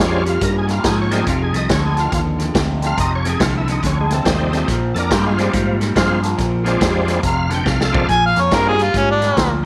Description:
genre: electric blues shuffle.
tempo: 141 BPM.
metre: 4/4.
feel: swing 64% on 8ths.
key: Bb mixolydian.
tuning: A4 = 440 Hz.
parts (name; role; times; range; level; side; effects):
bright tonewheel organ; accompaniment; 0.0-8.8 s; Bb2 to G5; -25 LUFS; equal; slow rotary speaker, overdrive, chorus vibrato.
electric guitar through a small old amp; riff; 0.0-9.6 s; F2 to G3; -23 LUFS; equal; phaser.
fingered electric bass; bass; 0.0-9.7 s; F1 to Ab2; -23 LUFS; equal; none.
swinging big-band drum kit; drums; 0.0-9.5 s; hi-hat, kick drum, snare drum; -24 LUFS; equal; none.
mellow harmonica; melody; 8.1-9.5 s; Db4 to Ab5; -18 LUFS; equal; overdrive.
room: light reverb, studio reverb.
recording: none.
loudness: -17 LUFS.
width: mono.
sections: 0.0-8.1 A section; 8.1-9.7 A section.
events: drum fill 7.7-8.1; harmonica solo 8.1-9.7.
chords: 0.0 Bb7; 1.3 F7; 4.7 Bb7; 7.2 F; 8.1 Bb7.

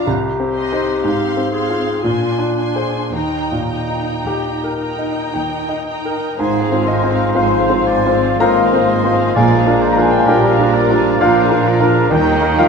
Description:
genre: classical.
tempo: 52-66 BPM.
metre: 3/4.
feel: rubato.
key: unclear.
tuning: A4 = 440 Hz.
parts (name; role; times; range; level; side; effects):
bright grand piano; melody; 0.0-12.7 s; C2 to Bb5; -16 LUFS; left 1 dB; none.
warm studio violin section; melody; 0.0-12.7 s; D5 to C6; -29 LUFS; left 3 dB; none.
clear clarinet; second line; 0.0-12.7 s; Eb4 to D5; -24 LUFS; left 4 dB; none.
warm studio violin section; second line; 0.0-12.7 s; G4 to Ab5; -26 LUFS; left 2 dB; none.
warm studio viola section; accompaniment; 0.0-12.7 s; G3 to F4; -25 LUFS; right 2 dB; none.
rich studio cello section; bass; 0.1-12.7 s; Eb2 to Eb3; -23 LUFS; right 4 dB; none.
clear oboe; second line; 6.4-12.7 s; Ab4 to G5; -25 LUFS; right 2 dB; none.
hollow flute section; second line; 6.4-12.7 s; Bb5 to C6; -24 LUFS; left 1 dB; none.
mellow bassoon; accompaniment; 6.4-12.7 s; Eb3 to F3; -23 LUFS; right 2 dB; none.
dark studio double bass section; bass; 6.4-12.7 s; Ab1 to Eb2; -24 LUFS; right 6 dB; none.
warm French horn section; sustained chords; 6.9-12.7 s; Eb3 to Bb3; -23 LUFS; left 3 dB; none.
timpani; percussion; 9.4-10.7 s; Bb2; -26 LUFS; right 2 dB; none.
room: moderate scoring stage reverb, RT60 1.5 s.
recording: minimal, uncompressed stereo recording.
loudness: -13 LUFS.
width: side -5 dB against mid.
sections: 0.0-6.4 A section; 6.4-12.7 B section.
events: none.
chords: 0.1 Cm; 1.0 Fm/Ab; 2.0 Bb9; 3.1 Eb; 6.4 Fm/Ab; 9.4 Bb7; 12.1 Eb.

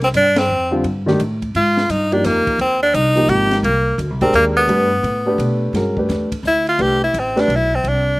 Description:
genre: modal jazz.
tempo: 172 BPM.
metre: 3/4.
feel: swing 64% on 8ths.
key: unclear.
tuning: A4 = 437 Hz.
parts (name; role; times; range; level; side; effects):
edgy tenor saxophone; melody; 0.0-8.2 s; Bb3 to G4; -16 LUFS; equal; slapback echo.
upright bass; bass; 0.0-8.2 s; Ab1 to B2; -21 LUFS; equal; none.
compact cocktail drum kit; drums; 0.0-7.9 s; hi-hat, kick drum, ride cymbal, snare drum; -30 LUFS; equal; none.
warm concert grand piano; accompaniment; 0.7-7.5 s; D3 to B4; -19 LUFS; equal; none.
room: little or no reverb.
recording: recorded outdoors, with no room sound.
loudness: -14 LUFS.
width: side -21 dB against mid.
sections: 0.0-5.7 A section; 5.7-8.2 B section.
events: band accent 0.3; tenor saxophone solo 5.7-8.2.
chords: 0.0 Bbmaj9 (rootless); 1.5 Abmaj9; 4.7 Gadd9; 5.7 Cmaj9.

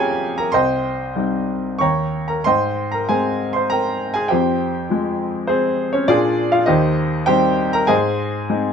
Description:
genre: classical, lyrical solo piano.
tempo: 90-103 BPM.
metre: 3/4.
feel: rubato.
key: Ab major.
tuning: A4 = 439 Hz.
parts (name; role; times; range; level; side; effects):
clear grand piano; solo; 0.0-8.7 s; C2 to Db6; -16 LUFS; equal; none.
room: light reverb.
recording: close, detailed microphones.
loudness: -16 LUFS.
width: side -7 dB against mid.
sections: 0.0-8.7 A section.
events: none.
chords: 0.0 Bbm/F; 0.5 Cm; 1.8 Eb7; 2.5 Abmaj7; 4.3 Fmadd9; 6.1 Bb7; 6.7 Eb6; 7.9 Ab.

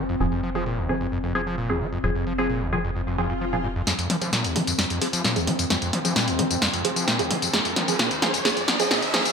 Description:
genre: driving peak-time techno.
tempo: 131 BPM.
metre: 4/4.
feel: straight.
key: F minor.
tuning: A4 = 440 Hz.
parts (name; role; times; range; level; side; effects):
screaming distorted acid line; riff; 0.0-9.3 s; Eb2 to F3; -28 LUFS; equal; distortion, chorus, digital delay.
tight sequencer bass; bass; 0.0-3.8 s; F1; -31 LUFS; equal; none.
deep dark ambient pad; drone; 0.0-9.3 s; F3 to C4; -31 LUFS; left 2 dB; chorus, built-in reverb.
filtered dub chord stab; stabs; 0.2-9.2 s; F3 to Ab4; -29 LUFS; right 2 dB; phaser, lush chorus, digital delay.
swell and riser; sound effects; 3.1-9.3 s; none; -32 LUFS; equal; none.
punchy analog drum machine; drums; 3.9-9.3 s; hi-hat, snare drum, tambourine, toms; -22 LUFS; left 1 dB; gated reverb.
room: wet plate reverb, RT60 1.2 s.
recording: bright 1980s-style digital production, high-pass filter.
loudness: -21 LUFS.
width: side -6 dB against mid.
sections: 0.0-3.9 A section; 3.9-9.3 B section.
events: filter sweep on synth stab 0.0-3.9, 3.9-9.3; swell 3.1-3.9; build-up 3.9-9.3; drum fill 3.9-9.3; filter sweep on acid bass 3.9-9.3; riser 5.9-9.3.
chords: 0.0 Fm.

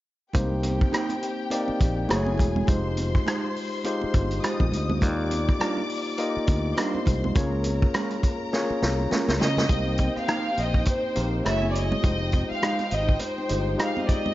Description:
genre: lush 1970s-style soul.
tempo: 103 BPM.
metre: 4/4.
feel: swing 58% on 16ths.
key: unclear.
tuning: A4 = 440 Hz.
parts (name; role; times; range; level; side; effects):
warm symphonic string section; second line; 0.3-14.3 s; Eb4 to Eb6; -35 LUFS; left 3 dB; none.
barky tine electric piano; accompaniment; 0.3-14.3 s; Ab3 to Eb5; -29 LUFS; left 2 dB; none.
fingered electric bass; bass; 0.3-13.7 s; Fb1 to Db3; -27 LUFS; equal; none.
vintage drum kit; drums; 0.3-14.2 s; hi-hat, kick drum, rim click, snare drum; -26 LUFS; equal; none.
congas; percussion; 0.3-14.3 s; none; -34 LUFS; right 3 dB; none.
mellow electric guitar; riff; 0.9-14.0 s; G3 to Db5; -32 LUFS; right 4 dB; spring reverb.
dark studio violin section; melody; 9.4-14.3 s; C5 to F5; -28 LUFS; equal; none.
room: light reverb, small room ambience.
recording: nothing above 7.5 kHz.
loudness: -22 LUFS.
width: side -15 dB against mid.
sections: 0.3-9.7 A section; 9.7-14.3 B section.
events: drum fill 8.5-9.7.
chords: 0.3 Cm7; 2.1 Gbm9; 2.7 Fm9; 5.0 Ebmaj9; 7.4 Db6; 9.7 Cm7; 11.5 Gbm9; 12.0 Fm9.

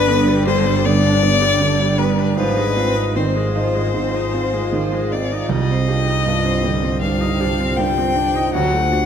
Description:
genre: neoclassical piano and strings.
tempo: 79 BPM.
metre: 4/4.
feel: rubato.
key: C harmonic minor.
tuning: A4 = 440 Hz.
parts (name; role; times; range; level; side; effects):
rich violin; melody; 0.0-9.1 s; B4 to G5; -20 LUFS; left 6 dB; none.
rich viola; accompaniment; 0.0-9.1 s; D3 to Eb4; -24 LUFS; right 3 dB; none.
warm baby grand piano; accompaniment; 0.0-9.1 s; C2 to G4; -20 LUFS; right 4 dB; none.
glassy FM pad; sustained chords; 0.0-9.1 s; D4 to F5; -26 LUFS; left 1 dB; ensemble chorus, built-in reverb.
rich double bass; bass; 0.0-9.1 s; G1 to D2; -23 LUFS; equal; none.
room: wet recital hall reverb, RT60 1.2 s.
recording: none.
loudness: -15 LUFS.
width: side -8 dB against mid.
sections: 0.0-9.1 A section.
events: none.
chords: 0.0 G; 2.4 Fm7/Ab; 5.5 Cmadd9; 8.5 D.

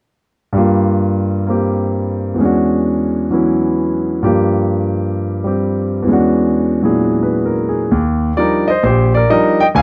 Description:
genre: solo jazz.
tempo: 130 BPM.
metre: 4/4.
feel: swing 66% on 8ths.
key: unclear.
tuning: A4 = 440 Hz.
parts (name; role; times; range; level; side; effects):
warm concert grand piano; solo; 0.5-9.8 s; Bb1 to Ab5; -15 LUFS; equal; none.
room: light reverb.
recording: dry, close 1970s-style studio recording.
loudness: -15 LUFS.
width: mono.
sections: 0.6-7.9 A section; 7.9-9.8 B section.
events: none.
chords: 0.6 Gm7; 2.4 E13; 4.2 Gm7; 6.1 E13; 7.9 Ebmaj9.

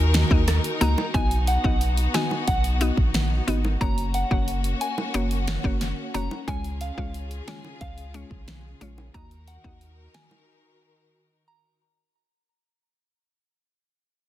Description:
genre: dancehall.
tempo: 90 BPM.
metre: 4/4.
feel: straight.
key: Eb minor.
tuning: A4 = 440 Hz.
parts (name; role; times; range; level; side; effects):
mallet-like synth pluck; accompaniment; 0.0-9.9 s; Ab3 to Eb5; -30 LUFS; left 3 dB; chorus.
rich studio string section; sustained chords; 0.0-11.8 s; Db3 to Bb4; -32 LUFS; left 2 dB; sidechain pumping.
warm sub bass; bass; 0.0-10.1 s; F1 to Eb2; -25 LUFS; equal; none.
pop drum kit; drums; 0.1-10.3 s; hi-hat, kick drum, rim click, snare drum; -25 LUFS; equal; none.
soft synth bell; melody; 0.8-11.6 s; F5 to Bb5; -31 LUFS; right 1 dB; chorus, ping-pong delay.
bongos; percussion; 0.8-10.5 s; none; -31 LUFS; right 3 dB; none.
room: digital ambience.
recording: dense, heavily limited modern master.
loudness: -22 LUFS.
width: side -13 dB against mid.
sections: 0.0-11.8 A section.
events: fade-out 0.0-11.8; break 10.5-11.8.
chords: 0.0 Ebm; 1.1 B; 3.8 Gb; 6.5 Db; 9.1 Ebm.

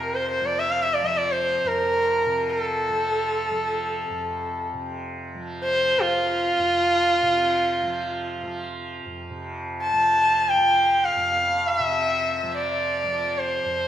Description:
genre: indian classical, Hindustani.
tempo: free time.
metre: none.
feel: none.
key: F raga bilaval.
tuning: A4 = 440 Hz.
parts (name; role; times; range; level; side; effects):
rich sarangi; melody; 0.0-13.9 s; F4 to A5; -21 LUFS; equal; none.
tanpura; drone; 0.0-13.9 s; F2 to F3; -32 LUFS; right 2 dB; none.
room: wet recital hall reverb, RT60 1.7 s.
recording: minimal, uncompressed stereo recording.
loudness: -20 LUFS.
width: side -10 dB against mid.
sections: 0.0-9.3 A section; 9.3-13.9 A section.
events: none.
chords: none.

